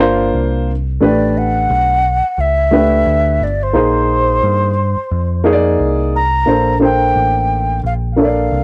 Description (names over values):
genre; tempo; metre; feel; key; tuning
hip hop, jazz-hop; 88 BPM; 4/4; swing 57% on 16ths; Bb major; A4 = 440 Hz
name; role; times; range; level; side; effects
dark baby grand piano; accompaniment; 0.0-8.6 s; A3 to D5; -17 LUFS; equal; cassette tape
deep dub picked electric bass; bass; 0.0-8.6 s; G1 to G2; -20 LUFS; equal; transformer saturation
breathy mellow concert flute; melody; 1.0-8.6 s; C5 to Bb5; -18 LUFS; equal; cassette tape, analog delay
room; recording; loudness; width
light reverb; home recording on cassette; -14 LUFS; mono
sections
0.0-6.5 A section; 6.5-8.6 B section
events
none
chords
0.0 C9sus4; 1.0 A9sus4; 3.7 Bb9sus4; 6.5 Bbmaj9